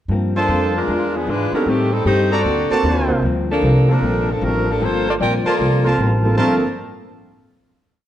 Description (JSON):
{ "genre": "jazz", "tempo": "153 BPM", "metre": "4/4", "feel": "swing 65% on 8ths", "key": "G minor", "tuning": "A4 = 439 Hz", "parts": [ { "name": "vintage hollow-body jazz guitar", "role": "accompaniment", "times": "0.1-6.6 s", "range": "G2 to F#4", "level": "-24 LUFS", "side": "left 3 dB", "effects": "none" }, { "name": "upright bass", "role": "bass", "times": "0.1-6.6 s", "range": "G1 to A2", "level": "-20 LUFS", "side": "equal", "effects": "none" }, { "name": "warm saxophone section", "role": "melody", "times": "0.4-6.6 s", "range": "Eb3 to G5", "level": "-19 LUFS", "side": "left 1 dB", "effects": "none" }, { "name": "bright trumpet section", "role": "stabs", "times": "0.4-6.5 s", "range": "F4 to Bb5", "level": "-22 LUFS", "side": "right 2 dB", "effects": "none" }, { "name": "warm baby grand piano", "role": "accompaniment", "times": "1.5-6.6 s", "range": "G2 to C5", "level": "-22 LUFS", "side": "right 2 dB", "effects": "none" } ], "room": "moderate recital hall reverb, RT60 1.3 s", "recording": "worn, warbling old tape, cassette tape, warbly pitch drift", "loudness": "-15 LUFS", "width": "side -11 dB against mid", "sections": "0.1-6.4 A section; 6.4-7.9 final chord", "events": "none", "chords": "0.1 Gm11; 0.9 E7b9; 1.7 Am7b5; 2.5 D7b13; 3.2 Gm11" }